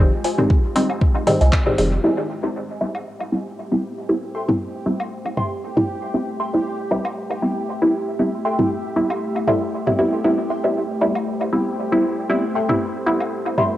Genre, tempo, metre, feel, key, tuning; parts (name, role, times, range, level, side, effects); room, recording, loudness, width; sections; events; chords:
dub techno; 117 BPM; 4/4; swing 55% on 16ths; A minor; A4 = 440 Hz
deep dark ambient pad; sustained chords; 0.0-13.8 s; Ab3 to E5; -29 LUFS; equal; chorus, built-in reverb, sidechain pumping
filtered dub chord stab; stabs; 0.0-13.8 s; Eb3 to E4; -20 LUFS; equal; chorus, phaser, sidechain pumping, dub echo
soft dub sub bass; bass; 0.0-2.0 s; F1 to C2; -18 LUFS; equal; sidechain pumping
filtered dub chord stab; riff; 0.2-13.7 s; F4 to C6; -28 LUFS; equal; phaser, wide subtle chorus, sidechain pumping, dub echo
deep house drum kit; drums; 0.2-1.9 s; handclaps, hi-hat; -29 LUFS; equal; low-pass filter on hats, cassette tape, low-pass filter on snare, dub echo
electronic toms and woodblock; percussion; 0.4-13.7 s; -29 LUFS; equal; sidechain pumping on perc, cassette tape, sidechain pumping on toms, dub echo
electronic kick drum; drums; 0.5-1.6 s; -17 LUFS; equal; cassette tape
bubbling stepped-filter texture; texture; 2.0-13.8 s; G4; -33 LUFS; equal; chorus, built-in reverb, sidechain pumping
wet spring reverb, RT60 2.1 s; home recording on cassette; -18 LUFS; side -14 dB against mid
0.0-2.0 A section; 2.0-13.8 B section
band accent 1.5
0.0 Fm7; 2.0 Am7